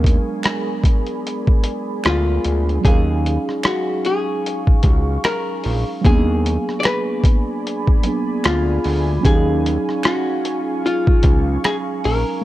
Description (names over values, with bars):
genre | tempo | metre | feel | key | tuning
lo-fi hip hop | 75 BPM | 4/4 | swing 57% on 16ths | Eb minor | A4 = 440 Hz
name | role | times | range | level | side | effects
muted felt-like synth keys | accompaniment | 0.0-12.4 s | Gb3 to F5 | -23 LUFS | right 2 dB | chorus, cassette tape, low-pass filter
deep dark ambient pad | sustained chords | 0.0-12.4 s | Ab4 to Db6 | -29 LUFS | equal | chorus, built-in reverb, low-pass filter
fat analog bass | bass | 0.0-12.2 s | Bb1 to Eb2 | -19 LUFS | equal | none
lo-fi sampler-style drum kit | drums | 0.0-12.3 s | hi-hat, kick drum, rim click | -17 LUFS | equal | vintage 12-bit sampler grit
finger snap | percussion | 0.4-11.9 s | none | -32 LUFS | right 6 dB | none
archtop guitar, miked and amplified | melody | 2.1-12.4 s | F4 to D5 | -23 LUFS | left 3 dB | low-pass filter
room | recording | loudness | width
little or no reverb | none | -16 LUFS | side -15 dB against mid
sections
0.0-12.4 A section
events
none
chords
0.0 Bb7b9b13/Eb; 2.8 Ebm11; 6.0 Bb7b9b13/Eb; 9.2 Ebm11